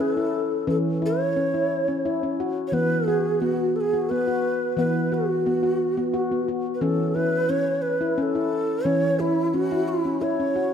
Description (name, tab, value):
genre	world meditative, meditative tuned percussion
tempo	88 BPM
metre	3/4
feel	straight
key	unclear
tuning	A4 = 439 Hz
part	breathy mellow low Native American-style wooden flute	melody	0.0-10.7 s	E4 to C#5	-24 LUFS	right 1 dB	ping-pong delay
part	handpan	arpeggios	0.0-10.7 s	E3 to F#4	-24 LUFS	left 2 dB	none
room	wet scoring stage reverb, RT60 1.6 s, small room ambience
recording	none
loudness	-21 LUFS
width	side -8 dB against mid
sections	0.0-10.7 A section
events	none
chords	0.0 A/E; 2.7 B5/E; 6.8 A/E